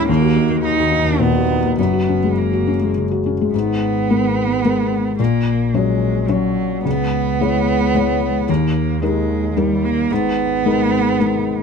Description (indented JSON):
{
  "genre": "neoclassical piano and strings",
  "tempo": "109 BPM",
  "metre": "3/4",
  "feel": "rubato",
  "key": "G# minor",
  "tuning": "A4 = 444 Hz",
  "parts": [
    { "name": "rich cello", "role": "second line", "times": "0.0-11.6 s", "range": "F#3 to D#4", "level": "-20 LUFS", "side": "right 8 dB", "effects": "none" },
    { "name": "felt-muted upright piano", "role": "accompaniment", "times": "0.0-11.6 s", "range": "C#2 to C#5", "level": "-18 LUFS", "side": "left 5 dB", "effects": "none" },
    { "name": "warm double bass", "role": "bass", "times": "0.0-11.6 s", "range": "F#1 to D#2", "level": "-24 LUFS", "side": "equal", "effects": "none" }
  ],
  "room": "light reverb",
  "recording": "none",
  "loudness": "-15 LUFS",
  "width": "side -6 dB against mid",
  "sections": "0.0-3.5 A section; 3.5-11.6 B section",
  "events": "none",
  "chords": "0.1 D#m; 1.8 F#add9; 3.5 G#madd9; 5.2 F#/A#; 6.9 C#m; 8.5 D#; 10.1 G#madd9",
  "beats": "| 0.08 0.64 1.19 | 1.78 2.37 2.95 | 3.53 4.09 4.64 | 5.19 5.73 6.28 | 6.85 7.40 7.94 | 8.48 9.02 9.56 | 10.10 10.65 11.20"
}